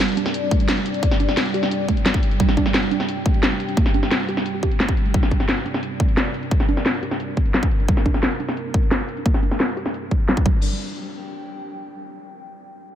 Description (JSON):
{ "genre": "dark technical drum and bass", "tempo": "175 BPM", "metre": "4/4", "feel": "straight", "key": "G minor", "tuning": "A4 = 437 Hz", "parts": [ { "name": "dark analog pad", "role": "sustained chords", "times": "0.0-10.6 s", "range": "G3 to G5", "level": "-27 LUFS", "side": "right 3 dB", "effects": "chorus, sidechain pumping" }, { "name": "drum and bass drum kit", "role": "drums", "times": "0.0-10.5 s", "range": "crash cymbal, hi-hat, snare drum", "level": "-23 LUFS", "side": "left 1 dB", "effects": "low-pass filter on hats, low-pass filter on snare, low-pass filter on toms, low-pass filter on cymbals, low-pass filter on room" }, { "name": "warbly tape-like pad", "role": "texture", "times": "0.0-12.0 s", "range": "D4 to A5", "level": "-36 LUFS", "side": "left 2 dB", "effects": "chorus, built-in reverb, sidechain pumping" }, { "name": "warbly dusty pluck", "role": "arpeggios", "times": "0.2-10.6 s", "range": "G3 to G4", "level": "-28 LUFS", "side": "right 3 dB", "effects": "chorus, sidechain pumping, tape echo" }, { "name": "electronic kick drum", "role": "drums", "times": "0.5-10.5 s", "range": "none", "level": "-19 LUFS", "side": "equal", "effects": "none" } ], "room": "light reverb, digital ambience", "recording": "none", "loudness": "-18 LUFS", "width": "side -10 dB against mid", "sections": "0.0-10.6 A section; 10.6-12.0 B section", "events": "filter sweep on drum 0.0-10.6; filter sweep on analog synth pad 0.0-10.6; filter sweep on synth arpeggio sound 0.0-10.6", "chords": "0.0 G5", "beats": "0.00 0.34 0.69 | 1.03 1.37 1.71 2.06 | 2.40 2.74 3.08 3.43 | 3.77 4.11 4.46 4.80 | 5.14 5.49 5.83 6.17 | 6.51 6.86 7.20 7.54 | 7.88 8.23 8.57 8.91 | 9.26 9.60 9.94 10.29 | 10.63 10.97 11.31 11.66" }